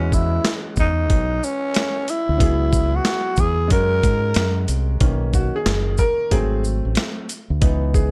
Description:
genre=hip hop, jazz-hop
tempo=92 BPM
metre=4/4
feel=swing 65% on 16ths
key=B major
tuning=A4 = 442 Hz
part: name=growling tenor saxophone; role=melody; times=0.0-4.7 s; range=C#4 to A#4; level=-24 LUFS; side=equal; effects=none
part: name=clear upright piano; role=accompaniment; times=0.0-8.1 s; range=D#3 to A#4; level=-28 LUFS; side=equal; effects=none
part: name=deep dub fingered electric bass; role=bass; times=0.0-8.1 s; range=F#1 to G#2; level=-23 LUFS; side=equal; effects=none
part: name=boom bap sampler-style drum kit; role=drums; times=0.1-8.1 s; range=hi-hat, kick drum, shaker, snare drum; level=-23 LUFS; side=equal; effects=none
room=light reverb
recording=none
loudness=-20 LUFS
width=mono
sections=0.0-5.0 A section; 5.0-8.1 B section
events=upright piano solo 5.0-8.1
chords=0.0 E6; 2.4 C#m7; 3.7 F#; 5.0 Bmaj7; 6.3 G#7b9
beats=0.45 1.10 1.75 | 2.40 3.06 3.71 4.36 | 5.01 5.67 6.32 6.97 | 7.62

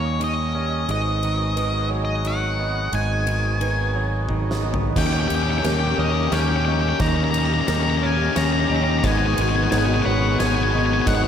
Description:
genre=post-rock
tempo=88 BPM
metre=3/4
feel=straight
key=G# minor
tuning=A4 = 441 Hz
part: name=octave-fuzz lead guitar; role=melody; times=0.0-11.3 s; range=C#5 to A#5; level=-25 LUFS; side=left 1 dB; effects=distortion, tape echo
part: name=hand-pumped harmonium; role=sustained chords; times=0.0-11.3 s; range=D#3 to A#5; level=-30 LUFS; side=right 4 dB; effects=none
part: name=felt-muted upright piano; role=arpeggios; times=0.0-11.3 s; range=A#4 to D#5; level=-33 LUFS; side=right 8 dB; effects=tape echo
part: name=twangy electric guitar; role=arpeggios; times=0.0-11.3 s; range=G#2 to B4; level=-28 LUFS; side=right 2 dB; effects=tape echo
part: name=growling fingered electric bass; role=bass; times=0.0-11.3 s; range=G#1 to D#2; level=-23 LUFS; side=equal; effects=overdrive
part: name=huge arena drum kit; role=drums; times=0.2-11.2 s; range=crash cymbal, kick drum, ride cymbal, snare drum, toms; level=-29 LUFS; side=equal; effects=none
part: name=thick fuzz guitar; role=riff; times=5.0-11.3 s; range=B3 to G4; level=-24 LUFS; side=left 9 dB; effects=distortion
room=moderate plate reverb, RT60 1.9 s, small room ambience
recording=dreamy mix soaked in reverb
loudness=-18 LUFS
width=side -8 dB against mid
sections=0.0-5.0 A section; 5.0-11.3 B section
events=drum fill 4.3-5.0, 5.0-11.3; build-up 5.0-11.3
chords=0.0 D#7; 0.9 G#m7; 5.0 D#7; 9.0 G#m7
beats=0.21 | 0.89 1.57 2.25 | 2.93 3.61 4.29 | 4.97 5.65 6.33 | 7.01 7.68 8.36 | 9.04 9.71 10.39 | 11.07

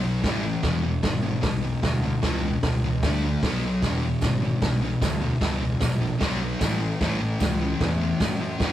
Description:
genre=garage rock duo or trio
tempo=151 BPM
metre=4/4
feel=straight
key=E mixolydian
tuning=A4 = 440 Hz
part: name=thick fuzz guitar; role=riff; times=0.0-8.7 s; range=E2 to D4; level=-26 LUFS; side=left 1 dB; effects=distortion
part: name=fuzz picked electric bass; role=bass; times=0.0-8.7 s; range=E1 to F#2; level=-28 LUFS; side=equal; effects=overdrive
part: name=vintage drum kit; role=drums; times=0.2-8.7 s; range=hi-hat, kick drum, snare drum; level=-27 LUFS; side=equal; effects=none
part: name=tambourine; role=percussion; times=4.2-8.3 s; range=none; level=-44 LUFS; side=right 6 dB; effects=none
room=moderate studio reverb, RT60 0.6 s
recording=rough rehearsal-room recording, warm saturation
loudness=-22 LUFS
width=side -12 dB against mid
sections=0.0-8.7 A section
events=none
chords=0.2 A5; 0.6 E; 3.0 D5; 3.4 B5; 3.8 E; 6.2 B5; 6.6 A5; 7.0 A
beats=0.24 | 0.64 1.04 1.44 1.83 | 2.23 2.63 3.03 3.43 | 3.83 4.22 4.62 5.02 | 5.42 5.82 6.22 6.61 | 7.01 7.41 7.81 8.21 | 8.60

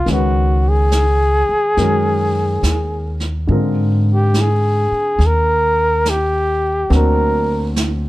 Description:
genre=jazz ballad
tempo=70 BPM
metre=4/4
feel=swing 67% on 8ths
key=unclear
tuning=A4 = 440 Hz
part: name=breathy flugelhorn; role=melody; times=0.0-7.7 s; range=F#4 to Bb4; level=-17 LUFS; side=equal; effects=none
part: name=warm baby grand piano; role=accompaniment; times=0.0-8.1 s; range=D3 to B4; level=-22 LUFS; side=equal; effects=none
part: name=upright bass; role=bass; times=0.0-8.1 s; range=C#2 to Ab2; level=-17 LUFS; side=equal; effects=none
part: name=jazz brush drum kit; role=drums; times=0.1-8.1 s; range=brushed snare drum, hi-hat, snare drum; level=-25 LUFS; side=right 2 dB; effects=none
room=little or no reverb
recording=none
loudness=-14 LUFS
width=side -17 dB against mid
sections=0.0-8.1 A section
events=none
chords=0.1 C#5; 1.8 F#add9; 3.5 Ab69; 6.9 D7b13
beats=| 0.07 0.92 1.77 2.63 | 3.49 4.35 5.20 6.05 | 6.91 7.76

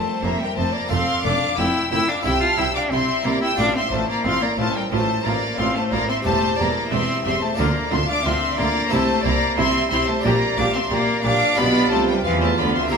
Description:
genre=classical, baroque-style concerto movement with solo episodes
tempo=90 BPM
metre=4/4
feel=straight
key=F major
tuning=A4 = 441 Hz
part: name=rich cello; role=melody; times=0.0-13.0 s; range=F3 to F4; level=-24 LUFS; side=left 2 dB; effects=none
part: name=warm studio violin section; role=melody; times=0.0-13.0 s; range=F5 to F6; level=-25 LUFS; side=left 2 dB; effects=none
part: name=rich chamber violin section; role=second line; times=0.0-13.0 s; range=Bb4 to A5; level=-25 LUFS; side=equal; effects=none
part: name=harpsichord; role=accompaniment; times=0.0-13.0 s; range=E2 to D5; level=-30 LUFS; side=right 3 dB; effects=none
part: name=dark chamber viola section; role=accompaniment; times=0.2-13.0 s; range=A3 to G4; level=-28 LUFS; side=right 1 dB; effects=none
part: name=rich chamber double bass section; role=bass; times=0.2-13.0 s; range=E1 to E2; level=-27 LUFS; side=right 2 dB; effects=none
part: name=warm chamber cello section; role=bass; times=0.2-13.0 s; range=E2 to E3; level=-27 LUFS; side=right 2 dB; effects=none
room=wet recital hall reverb, RT60 1.8 s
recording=minimal, uncompressed stereo recording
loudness=-18 LUFS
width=side -6 dB against mid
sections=0.0-13.0 A section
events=none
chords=0.0 C/F; 0.9 F; 2.2 C; 3.6 F/A; 6.3 C/E; 7.6 Bb/D; 8.9 Am/C; 10.2 Gm/Bb; 11.6 G7/B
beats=0.24 | 0.91 1.58 2.25 2.92 | 3.59 4.25 4.92 5.59 | 6.26 6.92 7.59 8.25 | 8.91 9.58 10.24 10.91 | 11.58 12.25 12.92

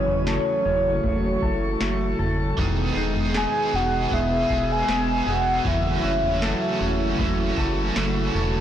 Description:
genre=dream pop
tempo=78 BPM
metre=4/4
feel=straight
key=unclear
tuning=A4 = 445 Hz
part: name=warm velvety synth lead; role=melody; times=0.0-8.0 s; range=C#5 to G#5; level=-25 LUFS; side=equal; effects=chorus, tremolo, digital delay
part: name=hollow soft pad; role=sustained chords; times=0.0-8.6 s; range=B2 to G#4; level=-27 LUFS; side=right 1 dB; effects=chorus
part: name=mellow electric guitar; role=arpeggios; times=0.0-8.6 s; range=D#3 to A4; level=-29 LUFS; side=left 4 dB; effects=lush chorus, digital delay
part: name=round analog bass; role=bass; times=0.0-8.6 s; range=E1 to F#1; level=-28 LUFS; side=equal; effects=transformer saturation
part: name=soft vintage rhythm box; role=drums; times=0.1-8.5 s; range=kick drum, snare drum, toms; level=-29 LUFS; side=equal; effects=none
part: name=biting overdriven guitar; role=accompaniment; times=2.6-8.6 s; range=F#2 to G#4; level=-29 LUFS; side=right 3 dB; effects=tremolo, wide subtle chorus
room=moderate shimmer reverb, RT60 4.5 s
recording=blown-out, overdriven recording, overdrive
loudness=-20 LUFS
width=side -10 dB against mid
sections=0.0-8.6 A section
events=none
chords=0.0 F#m7; 2.6 Emaj7; 5.7 F#m7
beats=0.27 1.04 1.81 | 2.58 3.35 4.12 4.89 | 5.66 6.43 7.20 7.96

